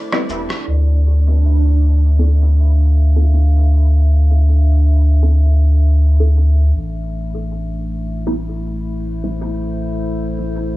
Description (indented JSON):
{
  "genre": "ambient dub",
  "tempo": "79 BPM",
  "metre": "4/4",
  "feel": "swing 56% on 16ths",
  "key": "D minor",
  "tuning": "A4 = 438 Hz",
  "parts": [
    { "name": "warbly tape-like pad", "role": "sustained chords", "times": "0.0-10.8 s", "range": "A3 to F5", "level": "-27 LUFS", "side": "right 1 dB", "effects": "chorus, built-in reverb" },
    { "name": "backwards swelling texture", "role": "texture", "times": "0.0-0.7 s", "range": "D4 to D5", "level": "-29 LUFS", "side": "right 7 dB", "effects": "built-in reverb" },
    { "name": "filtered dub chord stab", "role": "stabs", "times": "0.1-9.4 s", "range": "G3 to A4", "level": "-26 LUFS", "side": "equal", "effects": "phaser, dub echo" },
    { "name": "electronic rim click, woodblock and cabasa", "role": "drums", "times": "0.1-0.6 s", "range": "none", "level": "-27 LUFS", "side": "equal", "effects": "dub echo" },
    { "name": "warm sub bass", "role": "bass", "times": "0.3-10.8 s", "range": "E1 to D2", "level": "-13 LUFS", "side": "equal", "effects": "none" }
  ],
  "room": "little or no reverb",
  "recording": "echo-heavy mix, low-pass filter, small room ambience",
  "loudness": "-13 LUFS",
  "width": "side -19 dB against mid",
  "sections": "0.7-10.8 A section",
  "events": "drum fill 0.0-0.7; band accent 0.5-0.9",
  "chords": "0.0 Am7; 0.7 Dm7; 6.7 Am7",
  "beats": "| 0.67 1.43 2.19 2.95 | 3.71 4.47 5.23 5.99 | 6.75 7.51 8.27 9.03 | 9.79 10.54"
}